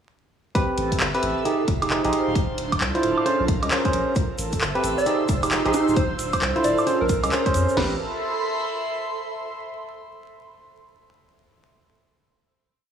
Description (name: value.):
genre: UK garage, two-step garage.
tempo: 133 BPM.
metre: 4/4.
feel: swing 63% on 16ths.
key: A minor.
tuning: A4 = 440 Hz.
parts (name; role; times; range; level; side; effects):
mellow tine electric piano; stabs; 0.6-7.9 s; C4 to D#5; -24 LUFS; right 1 dB; overdrive, tape echo.
house drum kit; drums; 0.6-7.9 s; crash cymbal, kick drum, snare drum, toms; -26 LUFS; equal; none.
house drum kit; drums; 0.6-7.7 s; handclaps, hi-hat, rim click, woodblock; -26 LUFS; right 1 dB; none.
airy breathy pad; texture; 0.8-9.5 s; D4 to C6; -29 LUFS; right 2 dB; chorus, phaser, sidechain pumping.
saturated sub bass; bass; 0.8-8.0 s; D1 to F2; -30 LUFS; equal; none.
ethereal airy pad; sustained chords; 4.4-7.8 s; C5 to E6; -34 LUFS; right 1 dB; ensemble chorus, built-in reverb, sidechain pumping.
egg shaker; percussion; 4.2-7.8 s; none; -37 LUFS; right 2 dB; none.
soft struck synth lead; melody; 5.0-7.2 s; Eb4 to D5; -26 LUFS; right 1 dB; chorus, cassette tape, tape echo.
room: light reverb, digital ambience.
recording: vinyl crackle, studio reverb.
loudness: -20 LUFS.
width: side -8 dB against mid.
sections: 0.6-7.8 drop; 7.8-9.6 final chord.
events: drop 0.6-7.8.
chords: 0.6 Am9; 1.5 Fm9; 2.4 Dm9; 3.3 Bbm9; 4.2 Am9; 5.1 Fm9; 6.0 Dm9; 6.9 Bbm9; 7.8 Amadd9.